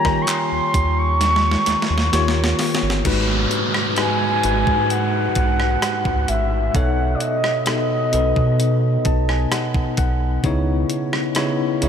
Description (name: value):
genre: contemporary R&B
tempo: 65 BPM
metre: 4/4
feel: straight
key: unclear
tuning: A4 = 444 Hz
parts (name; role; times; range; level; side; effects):
- mellow horn-like synth lead; melody; 0.0-9.5 s; D5 to C#6; -22 LUFS; right 1 dB; chorus, ping-pong delay
- bell-like tine electric piano; accompaniment; 0.0-11.9 s; G#2 to A5; -22 LUFS; left 1 dB; slow stereo tremolo
- crisp 8-bit digital drum machine; drums; 0.0-11.9 s; crash cymbal, handclaps, hi-hat, kick drum, rim click, snare drum; -24 LUFS; equal; overdrive
- rubbery square bass; bass; 0.1-11.9 s; G1 to D#3; -21 LUFS; equal; none
- downlifter and swell; sound effects; 3.1-11.9 s; none; -28 LUFS; equal; none
room: wet cathedral reverb, RT60 6.2 s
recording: dreamy mix soaked in reverb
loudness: -17 LUFS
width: side -8 dB against mid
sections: 0.0-3.1 A section; 3.1-11.9 B section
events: drum fill 1.2-3.1; tine electric piano fill 8.6-10.4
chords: 0.0 D#7; 3.1 G#m7; 6.7 B7; 10.4 C#m7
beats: 0.28 1.21 2.13 | 3.05 3.98 4.90 5.82 | 6.75 7.67 8.59 9.51 | 10.44 11.36